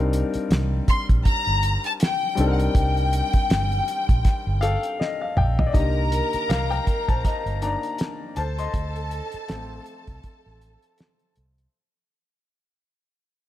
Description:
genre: lush 1970s-style soul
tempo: 80 BPM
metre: 4/4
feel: swing 58% on 16ths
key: C dorian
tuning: A4 = 439 Hz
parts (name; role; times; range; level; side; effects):
- clear grand piano; accompaniment; 0.0-11.8 s; D3 to C6; -28 LUFS; left 4 dB; none
- vintage muted fingered electric bass; bass; 0.0-11.7 s; G1 to D2; -24 LUFS; equal; none
- cloth-damped thuddy drum kit; drums; 0.1-11.7 s; hi-hat, kick drum, snare drum, toms; -22 LUFS; equal; none
- rich studio violin section; melody; 0.9-4.8 s; F#5 to C6; -25 LUFS; left 3 dB; none
- warm studio string section; second line; 5.7-11.3 s; A4 to Bb5; -30 LUFS; equal; none
room: small room ambience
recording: none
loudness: -20 LUFS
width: side -13 dB against mid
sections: 0.0-5.7 A section; 5.7-11.7 B section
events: drum fill 5.0-5.7; fade-out 5.7-11.7; grand piano solo 5.7-11.7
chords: 0.0 Cm7; 8.4 Dm7

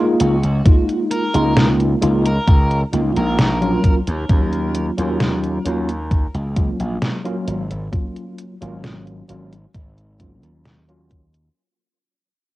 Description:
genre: vaporwave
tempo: 66 BPM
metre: 4/4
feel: straight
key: unclear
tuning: A4 = 441 Hz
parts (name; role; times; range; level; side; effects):
- tine electric piano; accompaniment; 0.0-11.3 s; Gb3 to F4; -21 LUFS; equal; overdrive, medium stereo tremolo, lush chorus, cassette tape, analog delay
- gritty slap bass; bass; 0.2-11.5 s; Ab1 to Eb2; -20 LUFS; equal; overdrive, tube saturation
- detuned 8-bit digital drum machine; drums; 0.2-11.5 s; hi-hat, snare drum; -20 LUFS; equal; cassette tape
- electronic kick drum; drums; 0.7-11.3 s; none; -14 LUFS; equal; cassette tape
- smooth overdriven lead guitar; melody; 1.1-3.9 s; Bb4; -27 LUFS; equal; cassette tape, tape echo
room: light reverb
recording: home recording on cassette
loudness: -16 LUFS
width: side -17 dB against mid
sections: 0.0-11.6 A section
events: fade-out 1.9-11.6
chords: 0.2 Db69; 3.8 Ebm9; 7.5 Ab13sus4

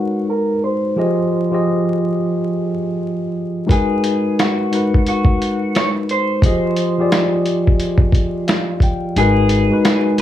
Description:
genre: lo-fi hip hop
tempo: 88 BPM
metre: 4/4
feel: swing 62% on 16ths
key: unclear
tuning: A4 = 439 Hz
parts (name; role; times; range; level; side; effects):
- electric guitar through a small old amp; melody; 0.0-10.2 s; Gb4 to Db5; -22 LUFS; equal; low-pass filter, tape echo
- mellow tine electric piano; accompaniment; 0.0-10.2 s; F3 to G5; -17 LUFS; left 1 dB; medium stereo tremolo, low-pass filter
- lo-fi sampler-style drum kit; drums; 3.7-10.2 s; hi-hat, kick drum, snare drum; -16 LUFS; equal; none
- upright bass; bass; 9.2-10.2 s; Ab1 to Bb1; -17 LUFS; equal; none
room: light reverb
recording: vinyl crackle, small room ambience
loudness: -15 LUFS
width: side -11 dB against mid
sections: 0.0-9.2 A section; 9.2-10.2 B section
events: filter sweep 0.0-9.2; tine electric piano fill 8.1-9.2; kick muted 9.2-10.2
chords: 0.0 Abm7; 1.0 Fm7; 3.7 Abm7; 6.4 Fm7; 9.2 Abm7

